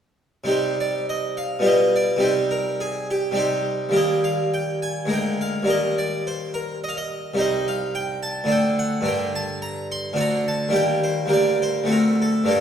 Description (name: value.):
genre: classical, baroque-style suite movement for harpsichord.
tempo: 105 BPM.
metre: 3/4.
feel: rubato.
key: C minor, G minor from 7.4 s.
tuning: A4 = 440 Hz.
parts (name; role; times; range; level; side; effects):
harpsichord; solo; 0.4-12.6 s; C2 to C6; -20 LUFS; equal; none.
room: wet recital hall reverb, RT60 1.6 s.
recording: heard from further back in the room.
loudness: -20 LUFS.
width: side -8 dB against mid.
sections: 0.5-12.6 A section.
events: none.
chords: 0.5 Cm; 4.0 Eb; 5.1 Bb7/D; 5.7 Eb; 7.4 Cm; 8.5 D; 9.1 Gm; 10.2 D; 10.8 Eb; 11.3 Gm/D; 11.9 D7.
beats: | 0.50 1.09 1.67 | 2.25 2.82 3.40 | 3.97 4.53 5.10 | 5.67 6.24 6.81 | 7.37 7.93 8.50 | 9.06 9.62 10.18 | 10.75 11.32 11.90 | 12.51.